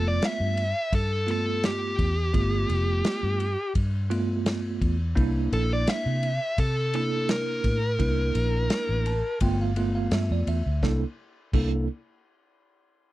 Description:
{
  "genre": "straight-eighth soul blues",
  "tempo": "85 BPM",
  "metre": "4/4",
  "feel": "straight",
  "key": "C mixolydian",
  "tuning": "A4 = 440 Hz",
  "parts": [
    { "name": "dark smooth lead guitar", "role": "melody", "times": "0.0-9.4 s", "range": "G4 to E5", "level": "-28 LUFS", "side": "equal", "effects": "overdrive" },
    { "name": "bell-like tine electric piano", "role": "accompaniment", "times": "0.0-11.9 s", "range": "A3 to A5", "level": "-30 LUFS", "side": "right 4 dB", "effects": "fast stereo tremolo" },
    { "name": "vintage muted fingered electric bass", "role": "bass", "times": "0.0-11.9 s", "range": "F1 to C3", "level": "-26 LUFS", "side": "equal", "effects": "none" },
    { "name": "warm soul drum kit", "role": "drums", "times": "0.2-11.7 s", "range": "crash cymbal, kick drum, ride cymbal, snare drum", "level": "-30 LUFS", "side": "equal", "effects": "none" }
  ],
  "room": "little or no reverb",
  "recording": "dry, close 1970s-style studio recording",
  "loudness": "-23 LUFS",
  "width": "side -16 dB against mid",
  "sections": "0.0-10.8 A section; 10.8-13.1 B section",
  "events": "lead electric guitar solo 0.0-10.8; tine electric piano fill 8.7-10.8",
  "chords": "0.0 G9; 5.2 C9; 9.4 G9; 10.8 C13"
}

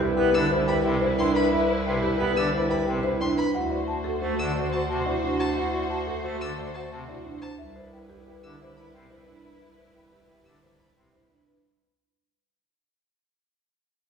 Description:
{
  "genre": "classical, minimalist pattern music",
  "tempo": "178 BPM",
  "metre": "6/4",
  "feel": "straight",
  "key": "unclear",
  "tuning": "A4 = 440 Hz",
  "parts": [
    { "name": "buzzing marimba with medium hard mallets", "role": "melody", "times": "0.0-11.7 s", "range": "G4 to A5", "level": "-30 LUFS", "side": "left 5 dB", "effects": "none" },
    { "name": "warm soprano saxophone", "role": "second line", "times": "0.0-11.4 s", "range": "E4 to F#4", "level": "-32 LUFS", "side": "right 2 dB", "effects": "none" },
    { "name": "rich symphonic string section", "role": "sustained chords", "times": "0.0-11.4 s", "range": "E4 to C5", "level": "-32 LUFS", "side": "left 2 dB", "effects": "none" },
    { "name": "dark grand piano", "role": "arpeggios", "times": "0.0-11.5 s", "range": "D4 to C5", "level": "-30 LUFS", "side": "right 5 dB", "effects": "none" },
    { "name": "clear bass clarinet", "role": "bass", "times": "0.0-11.5 s", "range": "C2 to D2", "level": "-31 LUFS", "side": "equal", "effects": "none" },
    { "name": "pipe organ, full organ", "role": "accompaniment", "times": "0.2-11.1 s", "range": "C3 to B3", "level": "-31 LUFS", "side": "equal", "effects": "none" },
    { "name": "warm violin", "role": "arpeggios", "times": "0.3-10.9 s", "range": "A5 to E6", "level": "-36 LUFS", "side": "left 1 dB", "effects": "none" }
  ],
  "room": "wet recital hall reverb, RT60 1.7 s",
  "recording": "heard from further back in the room, small room ambience",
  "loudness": "-22 LUFS",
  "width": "side -6 dB against mid",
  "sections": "0.0-11.6 A section",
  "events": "fade-out 0.0-11.6",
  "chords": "0.0 Cmaj7; 3.5 D7; 7.6 Cmaj7"
}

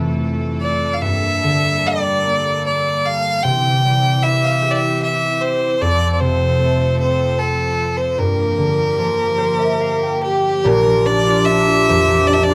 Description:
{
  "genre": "celtic folk, Celtic slow air",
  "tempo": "75 BPM",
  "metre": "3/4",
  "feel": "uneven beats, rubato",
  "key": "G dorian",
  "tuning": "A4 = 436 Hz",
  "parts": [
    { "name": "concert harp", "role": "accompaniment", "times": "0.0-12.5 s", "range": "Bb1 to G5", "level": "-22 LUFS", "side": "equal", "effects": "none" },
    { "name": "clear chamber string section", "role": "sustained chords", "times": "0.0-12.5 s", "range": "E3 to Bb4", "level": "-29 LUFS", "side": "equal", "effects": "none" },
    { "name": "clear fiddle", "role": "melody", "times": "0.6-12.5 s", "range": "G4 to G5", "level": "-20 LUFS", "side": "equal", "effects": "none" },
    { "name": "mellow hollow wooden flute", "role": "second line", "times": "10.6-12.5 s", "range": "G4", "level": "-19 LUFS", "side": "equal", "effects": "none" }
  ],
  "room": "moderate studio reverb, RT60 0.5 s",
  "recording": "none",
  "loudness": "-17 LUFS",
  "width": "mono",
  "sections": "0.0-10.6 A section; 10.6-12.5 B section",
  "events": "harp fill 9.0-10.6",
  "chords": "0.0 Fmaj7; 1.0 Gmadd9; 3.4 C; 5.8 F; 8.2 Gm7; 10.6 Bb"
}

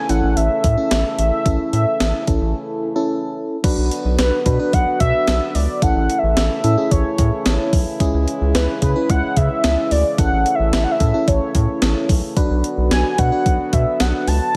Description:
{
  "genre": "synth-pop",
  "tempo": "110 BPM",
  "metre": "4/4",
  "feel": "straight",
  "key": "B dorian",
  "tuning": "A4 = 441 Hz",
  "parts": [
    { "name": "warm velvety synth lead", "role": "melody", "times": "0.0-14.6 s", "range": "B4 to A5", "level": "-23 LUFS", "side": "equal", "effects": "chorus, tape echo" },
    { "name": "mellow French horn section", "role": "sustained chords", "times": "0.0-14.5 s", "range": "C#3 to F#4", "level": "-29 LUFS", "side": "equal", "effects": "none" },
    { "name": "FM electric piano", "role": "accompaniment", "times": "0.1-14.3 s", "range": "C#4 to B4", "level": "-26 LUFS", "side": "equal", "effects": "chorus" },
    { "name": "round analog bass", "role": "bass", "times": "0.1-14.4 s", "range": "A1 to C#3", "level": "-21 LUFS", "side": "equal", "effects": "none" },
    { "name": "gated 80s digital drum machine", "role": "drums", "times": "0.1-14.4 s", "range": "crash cymbal, hi-hat, kick drum, snare drum", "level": "-22 LUFS", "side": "equal", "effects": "gated reverb, gated reverb snare" }
  ],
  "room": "light reverb",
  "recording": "none",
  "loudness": "-18 LUFS",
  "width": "mono",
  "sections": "0.0-3.6 A section; 3.6-14.6 B section",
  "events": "break 2.5-3.6",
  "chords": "0.0 A; 3.6 Bm; 5.8 A; 8.0 C#m; 10.2 A; 12.4 Bm"
}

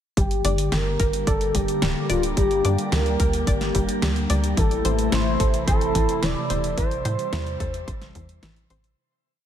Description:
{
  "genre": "synthwave",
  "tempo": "109 BPM",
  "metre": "4/4",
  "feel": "straight",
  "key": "G dorian",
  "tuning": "A4 = 441 Hz",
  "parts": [
    { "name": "expressive synth lead", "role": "melody", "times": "0.2-8.4 s", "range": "F4 to D5", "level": "-26 LUFS", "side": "equal", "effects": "analog chorus, tape echo, shimmer reverb" },
    { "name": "phased analog pad", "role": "sustained chords", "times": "0.2-9.0 s", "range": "C3 to G4", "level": "-28 LUFS", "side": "left 1 dB", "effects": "phaser, chorus, sidechain pumping, shimmer reverb" },
    { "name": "analog pluck", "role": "arpeggios", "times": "0.2-8.9 s", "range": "E3 to D5", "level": "-31 LUFS", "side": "left 3 dB", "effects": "chorus, tape echo, shimmer reverb" },
    { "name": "tight sequencer bass", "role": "bass", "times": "0.2-8.9 s", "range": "D1 to A2", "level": "-25 LUFS", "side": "equal", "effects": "sidechain pumping" },
    { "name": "electronic kick drum", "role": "drums", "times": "0.2-8.3 s", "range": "none", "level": "-24 LUFS", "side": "equal", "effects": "none" },
    { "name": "pop drum kit", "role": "drums", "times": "0.2-9.0 s", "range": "hi-hat, snare drum", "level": "-29 LUFS", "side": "equal", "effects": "none" }
  ],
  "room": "light reverb, digital ambience",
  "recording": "none",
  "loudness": "-20 LUFS",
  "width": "side -10 dB against mid",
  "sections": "0.2-9.0 verse",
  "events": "fade-out 6.0-9.0",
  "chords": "0.2 Gm; 4.6 Am"
}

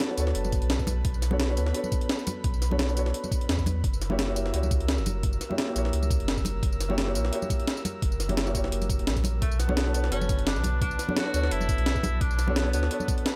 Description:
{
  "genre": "liquid drum and bass",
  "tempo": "172 BPM",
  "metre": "4/4",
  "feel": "swing 54% on 16ths",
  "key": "B minor",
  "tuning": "A4 = 441 Hz",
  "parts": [
    { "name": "felt-muted upright piano", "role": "accompaniment", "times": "0.0-13.4 s", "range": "D3 to C#5", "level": "-35 LUFS", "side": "equal", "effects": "low-pass filter, delay" },
    { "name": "airy breathy pad", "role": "sustained chords", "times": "0.0-13.4 s", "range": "A#4 to E6", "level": "-43 LUFS", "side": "equal", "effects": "chorus, sidechain pumping" },
    { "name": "breakbeat sampler-style drum kit", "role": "drums", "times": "0.0-13.3 s", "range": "hi-hat, snare drum, tambourine", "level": "-33 LUFS", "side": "equal", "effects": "none" },
    { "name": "warm sub bass", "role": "bass", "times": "0.2-12.9 s", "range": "E1 to E2", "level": "-30 LUFS", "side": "equal", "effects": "none" },
    { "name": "congas", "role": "percussion", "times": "0.4-13.1 s", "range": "none", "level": "-38 LUFS", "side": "equal", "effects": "none" },
    { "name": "electronic kick drum", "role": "drums", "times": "0.5-13.2 s", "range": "none", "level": "-31 LUFS", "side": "equal", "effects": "none" },
    { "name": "clear tenor saxophone", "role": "melody", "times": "9.4-13.2 s", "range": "A3 to F#4", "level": "-35 LUFS", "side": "equal", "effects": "delay" }
  ],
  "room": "little or no reverb",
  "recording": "none",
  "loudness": "-27 LUFS",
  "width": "mono",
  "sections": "0.0-13.4 A section",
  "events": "none",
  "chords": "0.0 Bm7; 3.8 F#7b9; 9.4 Bm7"
}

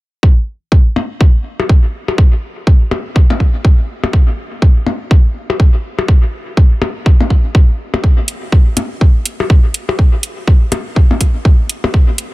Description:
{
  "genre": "minimal techno",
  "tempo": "123 BPM",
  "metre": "4/4",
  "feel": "swing 60% on 16ths",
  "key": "none",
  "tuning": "none",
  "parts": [
    { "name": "electronic kick drum", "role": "drums", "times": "0.2-12.1 s", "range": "none", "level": "-8 LUFS", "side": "equal", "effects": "none" },
    { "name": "percussion blips", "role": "percussion", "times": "1.0-11.9 s", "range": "none", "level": "-20 LUFS", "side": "left 3 dB", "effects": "diffuse ambient delay" },
    { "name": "electronic hi-hat", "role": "drums", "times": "8.3-12.3 s", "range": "none", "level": "-20 LUFS", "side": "right 2 dB", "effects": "none" }
  ],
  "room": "little or no reverb",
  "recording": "none",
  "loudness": "-10 LUFS",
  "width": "side -20 dB against mid",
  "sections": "0.2-12.3 A section",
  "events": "none",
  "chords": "none"
}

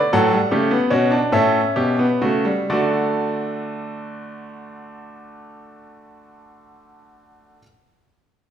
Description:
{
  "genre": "classical, baroque-style 4-part fugue for grand piano",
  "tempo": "40-54 BPM (dotted quarters)",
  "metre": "6/8",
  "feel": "straight",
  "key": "D major",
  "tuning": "A4 = 442 Hz",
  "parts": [
    { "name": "clear baby grand piano", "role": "solo", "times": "0.0-7.6 s", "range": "A2 to F#5", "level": "-18 LUFS", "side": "equal", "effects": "none" }
  ],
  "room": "moderate recital hall reverb, RT60 1.6 s",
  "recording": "minimal, uncompressed stereo recording",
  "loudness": "-17 LUFS",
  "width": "side -9 dB against mid",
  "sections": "0.0-2.7 A section; 2.7-8.5 B section",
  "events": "slowing down 0.0-2.7",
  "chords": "0.1 D/A; 1.3 A7; 2.7 D"
}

